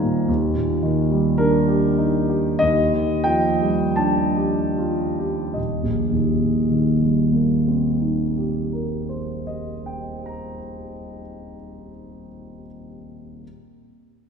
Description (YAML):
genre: classical, impressionist solo piano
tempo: 35-58 BPM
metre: 4/4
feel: rubato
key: Eb major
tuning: A4 = 440 Hz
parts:
  - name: warm concert grand piano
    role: solo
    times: 0.0-13.4 s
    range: Eb1 to Bb5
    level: -20 LUFS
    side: equal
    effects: none
room: wet concert hall reverb, RT60 2.3 s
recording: heard from further back in the room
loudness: -18 LUFS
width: side -6 dB against mid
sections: 0.0-5.6 A section; 5.6-11.2 B section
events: slowing down 0.0-5.6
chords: 0.3 Ebmaj7; 2.6 F13/Eb; 5.6 Eb6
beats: | 0.28 1.38 2.60 3.98 | 5.56 6.98 8.38 9.77